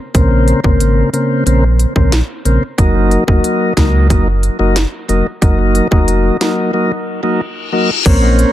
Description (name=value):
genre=dancehall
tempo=91 BPM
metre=4/4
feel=straight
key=unclear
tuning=A4 = 439 Hz
part: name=tonewheel organ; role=accompaniment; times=0.1-8.5 s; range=Db3 to Eb4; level=-14 LUFS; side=left 2 dB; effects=slow rotary speaker, analog delay
part: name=warm sub bass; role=bass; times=0.1-8.4 s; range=F1 to Db2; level=-13 LUFS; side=equal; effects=none
part: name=island pop drum kit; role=drums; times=0.1-8.5 s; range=crash cymbal, hi-hat, kick drum, snare drum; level=-14 LUFS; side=equal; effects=overdrive
part: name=reverse cymbal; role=sound effects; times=7.4-8.1 s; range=none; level=-20 LUFS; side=left 6 dB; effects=none
room=little or no reverb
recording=echo-heavy mix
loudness=-11 LUFS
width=side -13 dB against mid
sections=0.0-8.1 A section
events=break 6.7-8.1; reverse cymbal 7.4-8.1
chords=0.0 Bbmadd9; 2.8 Gb6